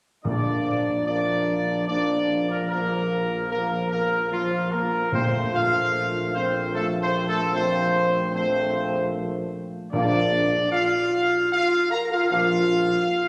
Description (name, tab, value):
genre	classical, ceremonial fanfare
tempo	75 BPM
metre	3/4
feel	straight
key	Bb major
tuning	A4 = 440 Hz
part	bright trumpet section	melody	0.2-13.3 s	F4 to Bb5	-27 LUFS	equal	none
part	dark trombone section	sustained chords	0.2-12.6 s	F3 to Bb3	-32 LUFS	equal	none
part	timpani	percussion	0.2-1.4, 5.1-11.1 s	Bb2	-33 LUFS	equal	none
part	dark French horn section	sustained chords	0.3-13.3 s	F3 to Bb4	-29 LUFS	equal	none
part	dark tuba	bass	0.3-13.0 s	Bb1	-33 LUFS	equal	none
room	wet concert hall reverb, RT60 2.0 s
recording	lossy compression artefacts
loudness	-23 LUFS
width	mono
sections	0.2-13.3 A section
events	none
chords	0.2 Bb; 5.1 F/Bb; 9.9 Bb